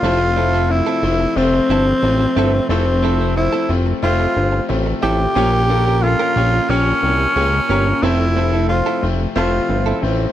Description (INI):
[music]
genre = pop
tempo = 90 BPM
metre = 4/4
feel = straight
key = F major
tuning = A4 = 440 Hz
[part]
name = raspy tenor saxophone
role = melody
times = 0.0-10.0 s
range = C4 to G4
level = -18 LUFS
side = equal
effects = none
[part]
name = biting overdriven guitar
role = accompaniment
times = 0.0-10.3 s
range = F2 to Bb3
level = -28 LUFS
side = left 1 dB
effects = ensemble chorus
[part]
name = clear concert grand piano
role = accompaniment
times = 0.0-10.3 s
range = Bb2 to Db5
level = -22 LUFS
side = left 4 dB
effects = none
[part]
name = direct-recorded clean electric guitar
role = riff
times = 0.0-10.2 s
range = C4 to Bb4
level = -25 LUFS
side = right 6 dB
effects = wide subtle chorus, ping-pong delay
[part]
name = fat analog bass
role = bass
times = 0.0-10.3 s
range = F1 to Db2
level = -18 LUFS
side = equal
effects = none
[sound]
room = little or no reverb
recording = dark, warm production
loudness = -14 LUFS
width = side -12 dB against mid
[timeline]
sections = 0.0-10.3 A section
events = none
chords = 0.0 Fmaj7; 5.4 Bbm6; 8.0 Fmaj7